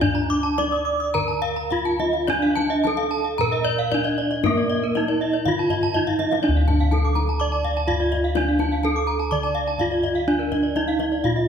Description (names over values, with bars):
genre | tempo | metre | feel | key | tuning
Balinese gamelan | 106-125 BPM | 4/4 | straight | D pelog | A4 = 440 Hz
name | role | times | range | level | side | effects
gamelan-type bronze metallophone | melody | 0.0-11.5 s | Bb3 to D5 | -23 LUFS | right 1 dB | none
gamelan-type bronze metallophone | arpeggios | 0.0-11.4 s | Bb4 to Eb6+35c | -27 LUFS | left 5 dB | none
gamelan-type bossed gongs | bass | 0.0-11.5 s | D2 to Bb4 | -26 LUFS | equal | none
kendang | percussion | 0.0-11.4 s | none | -31 LUFS | left 4 dB | none
gamelan-type bronze metallophone | arpeggios | 0.1-11.5 s | Bb4 to D6 | -28 LUFS | right 5 dB | none
room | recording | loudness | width
wet recital hall reverb, RT60 1.4 s | recorded in a church or concert hall | -19 LUFS | side -7 dB against mid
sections
0.0-6.4 A section; 6.4-11.5 B section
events
drum fill 5.8-6.4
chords
none